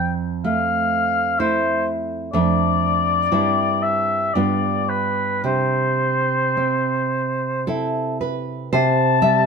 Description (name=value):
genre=romantic duo for oboe and classical guitar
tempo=53-64 BPM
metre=3/4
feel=rubato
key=C major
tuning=A4 = 439 Hz
part: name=warm oboe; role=melody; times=0.0-9.5 s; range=B4 to A5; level=-20 LUFS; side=left 3 dB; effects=none
part: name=nylon-string guitar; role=accompaniment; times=0.0-9.5 s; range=F2 to E5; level=-21 LUFS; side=right 3 dB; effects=none
room=moderate stone room reverb, RT60 1.1 s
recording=band playing live in one room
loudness=-18 LUFS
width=side -5 dB against mid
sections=0.0-8.7 A section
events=none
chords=0.0 Fmaj7; 2.3 Dm/F; 3.3 C/G; 4.3 G7; 5.4 C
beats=0.45 1.40 | 2.34 3.32 4.35 | 5.44 6.57 7.68 | 8.73